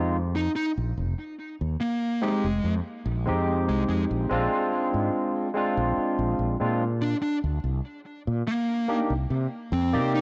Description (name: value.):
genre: vaporwave.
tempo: 72 BPM.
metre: 4/4.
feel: straight.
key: F dorian.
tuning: A4 = 440 Hz.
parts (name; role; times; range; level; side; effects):
barky tine electric piano; accompaniment; 0.0-10.2 s; Ab3 to D5; -29 LUFS; equal; analog chorus, tape echo.
fretless electric bass; bass; 0.0-10.2 s; F1 to C3; -29 LUFS; equal; tube saturation.
fuzz lead guitar; melody; 0.4-10.2 s; Ab3 to Eb4; -31 LUFS; equal; distortion, tape echo.
room: light reverb.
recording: worn, warbling old tape, cassette tape, warbly pitch drift.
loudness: -26 LUFS.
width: mono.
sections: 0.0-4.3 A section; 4.3-10.2 B section.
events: none.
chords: 0.0 Fm9; 4.3 Bb9; 7.6 Cm9.